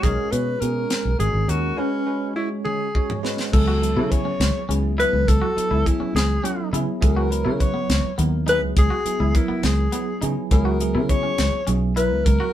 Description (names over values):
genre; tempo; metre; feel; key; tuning
electric jazz fusion; 69 BPM (dotted quarters); 6/8; straight; unclear; A4 = 440 Hz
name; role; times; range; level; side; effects
dark alto saxophone; melody; 0.0-12.5 s; C#4 to C#5; -24 LUFS; left 1 dB; none
barky tine electric piano; accompaniment; 0.0-12.5 s; F#3 to C#5; -27 LUFS; right 3 dB; medium stereo tremolo, phaser
fingered electric bass; bass; 0.0-12.4 s; G#1 to C#3; -22 LUFS; equal; none
tight funk drum kit; drums; 0.0-12.4 s; crash cymbal, hi-hat, kick drum, snare drum, toms; -22 LUFS; equal; none
clean electric guitar; stabs; 3.7-12.5 s; B3 to F#4; -30 LUFS; left 1 dB; none
room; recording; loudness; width
moderate studio reverb, RT60 0.6 s; band playing live in one room; -19 LUFS; side -12 dB against mid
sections
0.0-3.5 A section; 3.5-12.5 B section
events
break 1.8-3.5; drum fill 2.7-3.5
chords
0.0 B69; 1.8 C#5; 3.5 Amaj13/C#; 7.0 Emaj9#11/C#; 10.5 C#m7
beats
| 0.03 0.91 | 1.78 2.65 | 3.53 4.40 | 5.27 6.15 | 7.02 7.89 | 8.77 9.64 | 10.51 11.38 | 12.26